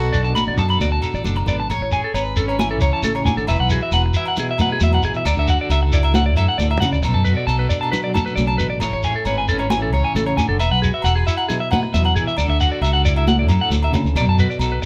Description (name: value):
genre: highlife guitar band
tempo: 135 BPM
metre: 4/4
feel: straight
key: A major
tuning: A4 = 441 Hz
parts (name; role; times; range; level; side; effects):
- electric guitar at the edge of break-up; accompaniment; 0.0-14.9 s; A2 to C#5; -28 LUFS; equal; tremolo
- fingered electric bass; bass; 0.0-14.8 s; E1 to D3; -22 LUFS; equal; none
- electric guitar at the edge of break-up; arpeggios; 0.1-14.9 s; G#4 to B5; -24 LUFS; equal; none
- shekere; percussion; 0.1-14.9 s; none; -27 LUFS; equal; none
- agogo bells; percussion; 0.3-14.7 s; none; -32 LUFS; equal; none
- congas; percussion; 0.4-14.7 s; none; -26 LUFS; equal; none
room: moderate studio reverb, RT60 0.6 s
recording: band playing live in one room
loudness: -19 LUFS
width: mono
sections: 0.0-1.7 A section; 1.7-14.9 B section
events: none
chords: 0.0 Bm7; 1.7 Amaj7; 3.5 Eadd9; 5.3 Dadd9; 7.0 Bm7; 8.8 Amaj7; 10.6 Eadd9; 12.4 Dadd9; 14.2 Bm7